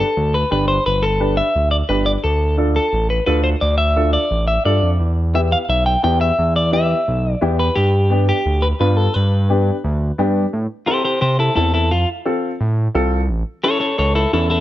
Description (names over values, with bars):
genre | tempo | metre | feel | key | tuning
latin, cumbia | 174 BPM | 4/4 | straight | A minor | A4 = 442 Hz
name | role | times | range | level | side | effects
clean electric guitar | melody | 0.0-14.6 s | E4 to G5 | -18 LUFS | left 1 dB | spring reverb, slapback echo
warm upright piano | accompaniment | 0.0-14.6 s | B3 to B4 | -22 LUFS | left 1 dB | none
smooth synth bass | bass | 0.0-14.6 s | G1 to C3 | -18 LUFS | equal | none
room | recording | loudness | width
little or no reverb | close, detailed microphones | -15 LUFS | side -14 dB against mid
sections
0.0-10.5 A section; 10.5-14.6 B section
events
clean electric guitar solo 10.5-14.6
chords
0.0 Gadd9; 2.2 Dm; 5.0 Em; 7.8 G; 10.5 Am; 11.9 F; 13.3 A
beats
0.17 0.51 | 0.86 1.20 1.55 1.89 | 2.24 2.58 2.93 3.27 | 3.62 3.96 4.31 4.65 | 5.00 5.34 5.69 6.04 | 6.38 6.73 7.07 7.42 | 7.76 8.11 8.46 8.80 | 9.15 9.49 9.84 10.19 | 10.53 10.88 11.22 11.57 | 11.91 12.26 12.61 12.95 | 13.30 13.64 13.99 14.33